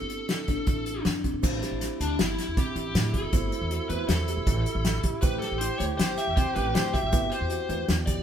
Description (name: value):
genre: progressive instrumental, band music in an uneven meter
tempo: 158 BPM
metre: 5/4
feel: straight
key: A dorian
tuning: A4 = 440 Hz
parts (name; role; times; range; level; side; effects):
- smooth overdriven lead guitar; melody; 0.0-8.2 s; D4 to E5; -32 LUFS; left 1 dB; ping-pong delay
- kalimba; arpeggios; 0.0-8.2 s; C4 to G4; -34 LUFS; right 1 dB; none
- upright bass; bass; 0.0-8.2 s; G1 to A2; -31 LUFS; right 1 dB; none
- unplugged drum kit; drums; 0.1-8.2 s; crash cymbal, hi-hat, kick drum, snare drum; -27 LUFS; equal; none
- breathy flugelhorn; second line; 1.4-8.2 s; E4 to G4; -34 LUFS; equal; none
- tine electric piano; accompaniment; 1.4-7.8 s; A3 to C5; -38 LUFS; right 1 dB; medium stereo tremolo
- egg shaker; percussion; 1.4-8.2 s; none; -44 LUFS; right 6 dB; none
room: moderate studio reverb, RT60 0.7 s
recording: band playing live in one room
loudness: -24 LUFS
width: side -9 dB against mid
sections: 0.0-1.4 A section; 1.4-8.2 B section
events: lead electric guitar solo 1.4-8.2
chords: 0.0 A7(no3); 1.4 Am7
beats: 0.29 0.67 1.05 | 1.43 1.81 2.19 2.57 2.95 | 3.33 3.71 4.09 4.47 4.85 | 5.23 5.61 5.99 6.37 6.75 | 7.13 7.51 7.88